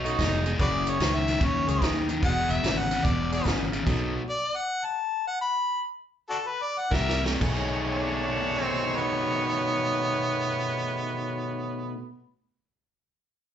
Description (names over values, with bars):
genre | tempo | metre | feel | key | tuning
electric blues shuffle | 118-147 BPM | 4/4 | swing 67% on 8ths | B mixolydian | A4 = 440 Hz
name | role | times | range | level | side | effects
warm harmonica | second line | 0.0-0.5, 7.9-12.3 s | B3 to F#4 | -30 LUFS | right 5 dB | overdrive, slapback echo
biting overdriven guitar | riff | 0.0-4.2, 6.9-12.0 s | E2 to G#4 | -29 LUFS | left 3 dB | slapback echo
warm horn section | stabs | 0.0-4.2, 6.9-11.9 s | D#3 to C#5 | -32 LUFS | right 1 dB | slapback echo
fingered electric bass | bass | 0.0-4.2, 6.9-11.9 s | E1 to D#2 | -30 LUFS | equal | none
swinging big-band drum kit | drums | 0.1-4.0, 6.9-7.6 s | crash cymbal, hi-hat, kick drum, snare drum | -29 LUFS | right 1 dB | none
clear harmonica | melody | 0.6-7.2 s | D4 to B5 | -28 LUFS | left 2 dB | overdrive, slapback echo
room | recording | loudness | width
light reverb | live gig heard through the venue's PA, club reverb, nothing above 7.8 kHz | -24 LUFS | side -9 dB against mid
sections
0.0-7.4 A section; 7.4-11.5 B section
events
slowing down 3.9-7.4; stop 3.9-6.9; drum fill 6.9-7.4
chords
0.0 B9; 0.6 F#9; 2.2 E9; 3.9 B13; 6.9 C9; 7.4 B13